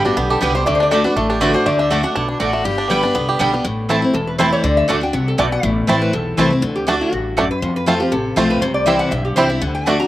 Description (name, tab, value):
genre	bluegrass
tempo	242 BPM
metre	4/4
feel	swing 53% on 8ths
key	unclear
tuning	A4 = 441 Hz
part	lap resonator guitar	melody	0.0-10.1 s	E4 to Bb5	-20 LUFS	left 1 dB	slapback echo
part	picked steel-string acoustic guitar	accompaniment	0.0-10.1 s	E2 to G4	-19 LUFS	left 2 dB	slapback echo
part	bluegrass banjo	arpeggios	0.0-9.9 s	G3 to G4	-20 LUFS	right 3 dB	slapback echo
part	mandolin	stabs	0.0-10.0 s	A3 to A5	-22 LUFS	right 4 dB	none
part	upright bass	bass	0.0-10.0 s	E1 to F2	-25 LUFS	equal	none
part	clear fiddle	second line	2.3-3.4 s	D4 to B4	-23 LUFS	left 4 dB	slapback echo
room	little or no reverb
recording	recorded outdoors, with no room sound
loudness	-15 LUFS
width	side -14 dB against mid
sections	0.0-3.6 A section; 3.6-10.1 B section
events	none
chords	0.0 G; 0.7 D; 2.7 G; 3.6 Am; 4.6 D; 5.6 Am; 6.6 D; 7.6 F; 8.6 C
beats	0.17 0.42 | 0.67 0.92 1.16 1.41 | 1.66 1.91 2.16 2.40 | 2.65 2.90 3.15 3.40 | 3.65 3.90 4.14 4.39 | 4.64 4.89 5.14 5.39 | 5.63 5.88 6.13 6.38 | 6.63 6.88 7.13 7.38 | 7.62 7.87 8.12 8.37 | 8.62 8.87 9.12 9.37 | 9.62 9.87